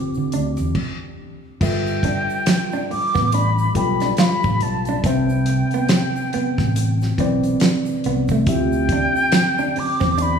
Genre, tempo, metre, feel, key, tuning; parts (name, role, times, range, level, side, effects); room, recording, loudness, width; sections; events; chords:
R&B, neo-soul; 70 BPM; 4/4; swing 58% on 16ths; A4 = 440 Hz
concert flute; melody; 0.0-10.4 s; G5 to D6; -23 LUFS; left 1 dB
tine electric piano; accompaniment; 0.0-10.4 s; C3 to G5; -24 LUFS; left 1 dB
egg shaker and finger snaps; percussion; 0.1-10.4 s; -37 LUFS; right 3 dB
fingered electric bass; bass; 0.2-10.4 s; G1 to D3; -23 LUFS; equal
electric guitar at the edge of break-up; second line; 0.3-10.4 s; A3 to F4; -27 LUFS; right 4 dB
damped 70s drum kit; drums; 0.3-10.4 s; crash cymbal, hi-hat, kick drum, rim click, snare drum; -22 LUFS; right 1 dB
wet church reverb, RT60 2.7 s; recorded in a church or concert hall, small room ambience; -17 LUFS; side -7 dB against mid
0.0-1.6 A section; 1.6-10.4 B section
stop 0.8-1.6
0.0 Dm11; 0.8 N.C.; 1.6 G13; 5.0 Cmaj7; 8.5 Dm11